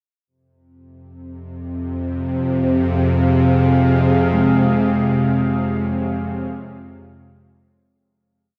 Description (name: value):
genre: dark ambient drone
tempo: free time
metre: none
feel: none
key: F minor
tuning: A4 = 441 Hz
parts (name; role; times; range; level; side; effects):
- deep dark ambient pad; sustained chords; 1.2-8.0 s; F3 to F5; -26 LUFS; equal; chorus, built-in reverb
- bowed-like drone; drone; 1.5-8.1 s; F2 to C3; -20 LUFS; equal; built-in reverb
- gamelan-type bronze metallophone; arpeggios; 4.3-8.6 s; Ab3; -24 LUFS; equal; delay
room: wet huge ambient reverb, RT60 8.1 s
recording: none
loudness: -18 LUFS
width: mono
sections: 0.3-8.0 A section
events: fade-in on synth drone 0.3-8.0; fade-out on ambient pad 0.3-8.0; fade-out 4.1-8.0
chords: 0.3 Fm; 4.1 Db/F